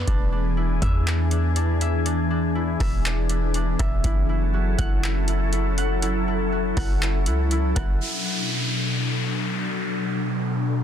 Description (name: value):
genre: hip hop, atmospheric cloud-rap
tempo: 121 BPM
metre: 4/4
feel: half-time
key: B dorian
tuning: A4 = 441 Hz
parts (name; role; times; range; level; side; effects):
- glassy FM pad; sustained chords; 0.0-10.8 s; B2 to A4; -26 LUFS; left 2 dB; ensemble chorus, built-in reverb, sidechain pumping, low-pass filter
- concert harp; arpeggios; 0.0-10.1 s; B3 to F#5; -33 LUFS; right 2 dB; tape echo
- warm 808-style bass; bass; 0.0-8.0 s; E1 to E2; -23 LUFS; equal; none
- booming analog drum machine; drums; 0.1-8.0 s; handclaps, hi-hat, kick drum, rim click; -25 LUFS; equal; overdrive
- downlifter; sound effects; 8.0-10.8 s; none; -27 LUFS; left 1 dB; none
room: little or no reverb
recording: dense, heavily limited modern master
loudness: -21 LUFS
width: side -9 dB against mid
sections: 0.0-8.0 A section; 8.0-10.8 B section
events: filter sweep on ambient pad 8.0-10.8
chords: 0.1 E7; 4.0 F#m7; 8.0 Bm7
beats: | 0.07 0.57 1.07 1.56 | 2.06 2.55 3.05 3.55 | 4.04 4.54 5.03 5.53 | 6.03 6.52 7.02 7.51 | 8.01 8.51 9.00 9.50 | 9.99 10.49